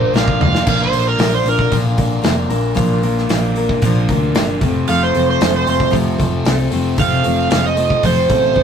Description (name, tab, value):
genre	folk rock and heartland rock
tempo	114 BPM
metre	4/4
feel	straight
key	unclear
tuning	A4 = 440 Hz
part	overdriven slide guitar	second line	0.0-8.6 s	Bb4 to F5	-16 LUFS	right 4 dB	none
part	picked steel-string acoustic guitar	accompaniment	0.0-8.6 s	F2 to Bb4	-19 LUFS	left 2 dB	none
part	biting overdriven guitar	riff	0.0-8.6 s	F2 to F4	-24 LUFS	equal	phaser
part	hollow-body short-scale picked electric bass	bass	0.0-8.6 s	F1 to F2	-20 LUFS	equal	none
part	natural country drum kit	drums	0.2-8.6 s	crash cymbal, hi-hat, kick drum, snare drum, toms	-19 LUFS	left 1 dB	none
room	light reverb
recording	rough rehearsal-room recording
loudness	-13 LUFS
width	side -7 dB against mid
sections	0.7-8.6 A section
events	drum fill 0.0-0.7; electric slide guitar solo 0.7-8.6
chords	0.0 Bb; 4.6 F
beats	0.14 | 0.67 1.20 1.73 2.25 | 2.78 3.31 3.83 4.36 | 4.89 5.41 5.94 6.46 | 6.99 7.51 8.04 8.56